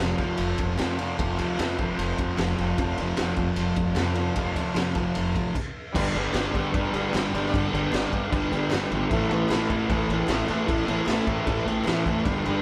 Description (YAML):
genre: garage rock duo or trio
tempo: 152 BPM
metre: 4/4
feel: straight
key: A minor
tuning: A4 = 443 Hz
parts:
  - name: overdriven combo organ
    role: sustained chords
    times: 0.0-12.6 s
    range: D4 to D5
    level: -37 LUFS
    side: equal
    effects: none
  - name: fuzz guitar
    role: riff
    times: 0.0-12.6 s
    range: F2 to A3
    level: -28 LUFS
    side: equal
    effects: distortion
  - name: upright bass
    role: bass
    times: 0.0-12.6 s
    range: F1 to F2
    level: -34 LUFS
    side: equal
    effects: tube saturation
  - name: raw garage drum kit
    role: drums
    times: 0.2-12.5 s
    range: crash cymbal, kick drum, ride cymbal, snare drum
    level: -31 LUFS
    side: equal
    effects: none
  - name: group handclap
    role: percussion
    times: 0.8-11.9 s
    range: none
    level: -45 LUFS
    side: equal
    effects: none
room: moderate large studio reverb, RT60 1.2 s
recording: band playing live in one room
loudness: -26 LUFS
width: mono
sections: 0.0-5.9 A section; 5.9-12.6 B section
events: stop 5.5-5.9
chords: 0.0 F; 5.9 G; 9.1 Am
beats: 0.39 0.79 | 1.18 1.58 1.98 2.38 | 2.77 3.17 3.57 3.96 | 4.36 4.76 5.15 5.55 | 5.94 6.34 6.73 7.13 | 7.52 7.91 8.31 8.70 | 9.10 9.49 9.88 10.28 | 10.67 11.07 11.46 11.86 | 12.25